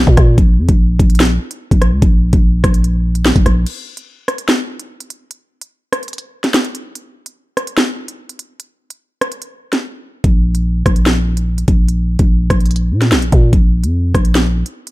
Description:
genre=hip hop, drill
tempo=146 BPM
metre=4/4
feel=half-time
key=unclear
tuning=A4 = 440 Hz
part: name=growling 808-style bass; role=bass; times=0.0-3.7, 10.2-14.6 s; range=Bb1 to Bb2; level=-14 LUFS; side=equal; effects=none
part: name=drill drum kit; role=drums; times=0.1-14.9 s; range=crash cymbal, hi-hat, kick drum, rim click, snare drum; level=-13 LUFS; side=equal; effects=none
room=little or no reverb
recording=dark, warm production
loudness=-12 LUFS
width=side -18 dB against mid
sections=0.0-3.7 A section; 3.7-14.9 B section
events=break 3.7-10.2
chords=none

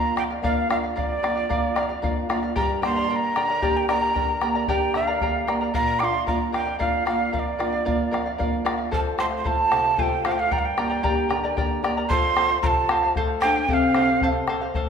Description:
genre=andean folk, Andean ensemble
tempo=76 BPM (dotted quarters)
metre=6/8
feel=straight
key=unclear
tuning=A4 = 442 Hz
part: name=breathy quena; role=melody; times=0.0-14.3 s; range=D5 to D6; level=-24 LUFS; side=right 3 dB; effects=none
part: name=charango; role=accompaniment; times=0.0-14.9 s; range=G4 to Bb5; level=-27 LUFS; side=left 1 dB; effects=none
part: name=nylon-string guitar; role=accompaniment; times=0.0-14.9 s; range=F2 to G4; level=-29 LUFS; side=right 1 dB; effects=none
part: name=bombo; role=percussion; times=0.2-14.9 s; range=none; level=-27 LUFS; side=left 3 dB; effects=none
part: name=mellow hollow pan flute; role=second line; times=12.1-14.3 s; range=C4 to F4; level=-26 LUFS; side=left 2 dB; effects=none
room=wet scoring stage reverb, RT60 1.9 s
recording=minimal, uncompressed stereo recording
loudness=-20 LUFS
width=side -7 dB against mid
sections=0.0-12.1 A section; 12.1-14.9 B section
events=none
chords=0.0 Bb; 2.6 Gm; 5.7 Bb; 8.9 F; 10.5 Gm; 12.1 F

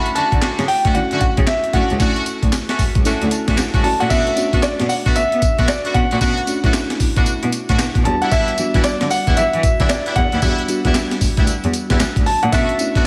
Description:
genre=R&B, new jack swing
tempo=114 BPM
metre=4/4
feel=swing 62% on 16ths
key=B minor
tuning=A4 = 437 Hz
part: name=dark grand piano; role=melody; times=0.0-13.0 s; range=D5 to B5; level=-23 LUFS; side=equal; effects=none
part: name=FM electric piano with soft pad layer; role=accompaniment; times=0.0-13.1 s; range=G3 to A5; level=-27 LUFS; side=equal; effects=chorus, tremolo
part: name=clear horn section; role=stabs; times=0.0-13.1 s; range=G3 to F#4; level=-27 LUFS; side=equal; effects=none
part: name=breakbeat sampler-style drum kit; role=drums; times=0.1-13.0 s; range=crash cymbal, handclaps, hi-hat, kick drum, snare drum, tambourine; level=-21 LUFS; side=equal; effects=none
part: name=bright cello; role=bass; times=0.2-13.0 s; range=C#2 to B3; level=-25 LUFS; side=equal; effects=none
room=moderate lush hall reverb, RT60 1.7 s, small room ambience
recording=big arena sound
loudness=-17 LUFS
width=mono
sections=0.0-4.1 A section; 4.1-13.1 B section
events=FM electric piano fill 3.1-4.1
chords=0.0 Dmaj7; 4.1 Bm7; 8.1 Em7; 12.5 Bm7

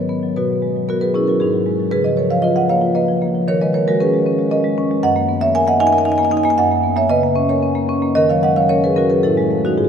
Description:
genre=classical, contemporary piece for solo marimba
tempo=115 BPM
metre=3/4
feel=rubato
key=unclear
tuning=A4 = 440 Hz
part: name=marimba with medium mallets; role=solo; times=0.0-9.9 s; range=F#2 to G#5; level=-14 LUFS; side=equal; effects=none
room=wet cathedral reverb, RT60 7.1 s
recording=minimal, uncompressed stereo recording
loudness=-14 LUFS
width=side -7 dB against mid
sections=0.0-9.9 A section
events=none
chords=0.4 Bsus2; 1.4 G#5; 1.9 C#13; 3.5 D#7sus4; 5.0 F#69; 6.6 F#6; 8.2 D#m7; 9.2 A5

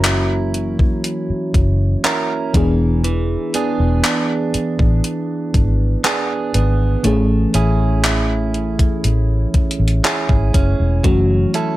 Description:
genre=contemporary R&B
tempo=60 BPM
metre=4/4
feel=straight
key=unclear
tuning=A4 = 440 Hz
part: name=mellow FM electric piano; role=accompaniment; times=0.0-11.8 s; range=E3 to G#4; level=-22 LUFS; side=left 2 dB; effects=chorus
part: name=direct-recorded clean electric guitar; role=arpeggios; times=0.0-11.8 s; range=E3 to A#4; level=-22 LUFS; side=right 5 dB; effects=tape echo
part: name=vintage muted fingered electric bass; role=bass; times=0.0-11.4 s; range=E1 to A1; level=-17 LUFS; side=equal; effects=none
part: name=gated 80s digital drum machine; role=drums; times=0.0-11.8 s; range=handclaps, hi-hat, kick drum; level=-17 LUFS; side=equal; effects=gated reverb
room=light reverb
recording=none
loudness=-14 LUFS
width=side -16 dB against mid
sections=0.0-11.8 A section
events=none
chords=0.0 F#7; 2.5 E7; 7.0 Amaj7; 11.0 F#m7

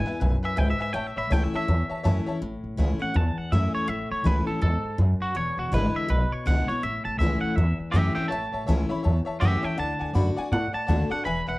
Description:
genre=rockabilly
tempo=163 BPM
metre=4/4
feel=swing 61% on 8ths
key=A major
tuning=A4 = 440 Hz
part: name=twangy electric guitar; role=melody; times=0.0-11.6 s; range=F#4 to B5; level=-29 LUFS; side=right 1 dB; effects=plate reverb, analog delay
part: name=picked steel-string acoustic guitar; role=accompaniment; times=0.0-11.6 s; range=E2 to F#4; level=-29 LUFS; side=left 2 dB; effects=plate reverb
part: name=tack piano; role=accompaniment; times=0.1-2.4, 8.3-11.6 s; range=B4 to B5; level=-32 LUFS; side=left 2 dB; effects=plate reverb
part: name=upright bass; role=bass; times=0.1-11.6 s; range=E1 to A2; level=-24 LUFS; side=equal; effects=none
room=light reverb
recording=cassette tape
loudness=-23 LUFS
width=side -20 dB against mid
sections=0.0-2.4 A section; 2.4-11.6 A section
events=none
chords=0.0 E; 0.9 A; 5.4 E7; 6.8 A; 9.8 D

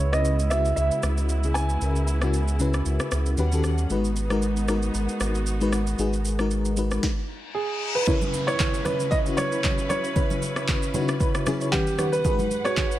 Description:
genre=amapiano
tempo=115 BPM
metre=4/4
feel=swing 55% on 16ths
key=unclear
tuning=A4 = 440 Hz
part: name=warm concert grand piano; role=melody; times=0.0-2.6, 7.5-13.0 s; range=G4 to G#5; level=-28 LUFS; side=right 2 dB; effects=low-pass filter, tape echo
part: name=FM electric piano with tremolo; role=accompaniment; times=0.0-13.0 s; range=C#3 to F#5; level=-28 LUFS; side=left 3 dB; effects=low-pass filter
part: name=muted studio string section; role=sustained chords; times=0.0-13.0 s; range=D#2 to F#5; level=-33 LUFS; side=right 1 dB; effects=low-pass filter
part: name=saturated sub bass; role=bass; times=0.0-7.0 s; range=G#1 to D#2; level=-25 LUFS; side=equal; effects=none
part: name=afro-pop drum kit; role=drums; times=0.1-13.0 s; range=handclaps, kick drum, rim click, shaker, snare drum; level=-28 LUFS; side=equal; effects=overdrive, vintage 12-bit sampler grit
part: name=reverse cymbal and downlifter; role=sound effects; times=7.4-12.2 s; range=none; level=-34 LUFS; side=left 3 dB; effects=none
part: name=deep mellow chord stab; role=stabs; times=8.1-13.0 s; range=D#4 to C#5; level=-31 LUFS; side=right 2 dB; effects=chorus, phaser, tape echo
part: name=congas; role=percussion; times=8.1-12.9 s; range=none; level=-34 LUFS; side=right 3 dB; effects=none
room=light reverb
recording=none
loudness=-22 LUFS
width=side -14 dB against mid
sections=0.0-8.1 A section; 8.1-13.0 B section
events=reverse cymbal 7.4-8.1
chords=0.0 C#m7; 3.4 D#7alt; 3.9 G#m7; 8.1 C#m7; 11.7 D#7alt; 12.2 G#m7

